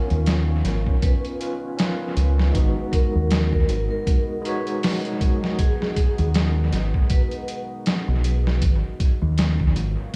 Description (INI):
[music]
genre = trip hop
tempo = 79 BPM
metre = 4/4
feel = swing 57% on 16ths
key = G# dorian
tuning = A4 = 439 Hz
[part]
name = vibraphone with medium mallets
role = melody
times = 0.0-7.6 s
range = G#4 to B4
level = -34 LUFS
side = equal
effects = vintage 12-bit sampler grit, dub echo
[part]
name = overdriven tine electric piano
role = accompaniment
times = 0.0-5.6 s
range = G#3 to C#5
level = -31 LUFS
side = equal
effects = tremolo, vintage 12-bit sampler grit, tape echo
[part]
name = deep dark ambient pad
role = sustained chords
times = 0.0-10.2 s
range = G#3 to C#5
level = -37 LUFS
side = equal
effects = chorus, built-in reverb
[part]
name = deep dub fingered electric bass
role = bass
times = 0.1-10.0 s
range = G#1 to D#2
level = -23 LUFS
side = equal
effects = none
[part]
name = trip hop sampler-style drum kit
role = drums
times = 0.1-10.2 s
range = hi-hat, kick drum, snare drum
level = -24 LUFS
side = equal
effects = analog delay
[sound]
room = light reverb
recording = echo-heavy mix, studio reverb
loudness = -22 LUFS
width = mono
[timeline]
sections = 0.0-10.2 A section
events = none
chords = 0.0 C#9/G#; 2.5 G#m7; 8.6 C#9/G#